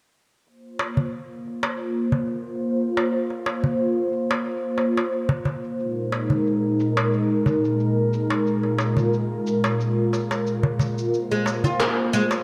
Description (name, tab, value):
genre	organic downtempo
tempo	90 BPM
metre	4/4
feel	swing 54% on 16ths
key	unclear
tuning	A4 = 442 Hz
part	airy breathy pad	sustained chords	0.8-12.4 s	Bb2 to C5	-25 LUFS	equal	chorus
part	electronic shaker and handclaps	drums	0.5-12.4 s	none	-34 LUFS	equal	overdrive, low-pass filter on perc, low-pass filter on snare, low-pass filter on room
part	darbuka	percussion	0.8-12.4 s	none	-28 LUFS	equal	none
part	oud	arpeggios	11.3-12.2 s	Ab3 to Bb4	-25 LUFS	equal	tape echo
room	wet lush hall reverb, RT60 1.9 s, small room ambience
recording	dark, warm production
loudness	-23 LUFS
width	mono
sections	0.5-12.4 A section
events	filter sweep on drum 0.5-12.4; filter sweep on analog synth pad 0.5-12.4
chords	0.5 Bb5; 5.8 Ab5/Bb; 11.1 Bb5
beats	| 0.46 1.13 1.80 2.46 | 3.13 3.80 4.46 5.13 | 5.80 6.46 7.13 7.80 | 8.46 9.13 9.80 10.46 | 11.13 11.80